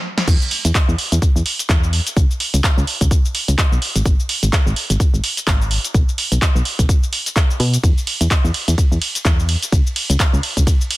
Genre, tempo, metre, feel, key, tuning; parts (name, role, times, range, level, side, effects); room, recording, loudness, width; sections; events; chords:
piano house; 127 BPM; 4/4; swing 58% on 16ths; A4 = 440 Hz
punchy analog drum machine; drums; 0.2-11.0 s; crash cymbal, handclaps, hi-hat, ride cymbal, shaker, snare drum; -20 LUFS; right 1 dB
solid FM bass; bass; 0.3-10.6 s; G#1 to B2; -17 LUFS; equal; tube saturation, sidechain pumping
electronic kick drum; drums; 0.3-10.8 s; -15 LUFS; equal
little or no reverb; dense, heavily limited modern master; -14 LUFS; side -18 dB against mid
0.3-11.0 A section
drum fill 0.0; stop 0.0; drop 0.3-11.0